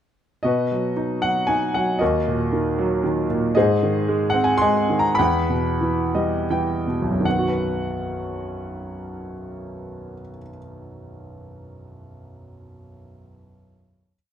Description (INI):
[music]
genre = classical, lyrical solo piano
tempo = 79-118 BPM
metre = 3/4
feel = rubato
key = B major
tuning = A4 = 440 Hz
[part]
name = warm grand piano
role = solo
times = 0.4-14.2 s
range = B1 to B#5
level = -20 LUFS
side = equal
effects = none
[sound]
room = light reverb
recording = close, detailed microphones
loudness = -19 LUFS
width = side -9 dB against mid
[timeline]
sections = 0.4-7.3 A section; 7.3-11.6 final chord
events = slowing down 3.5-7.3; grand piano fill 5.8-7.3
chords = 0.4 B; 2.0 D#m; 3.5 G#; 5.2 Emadd9; 7.3 B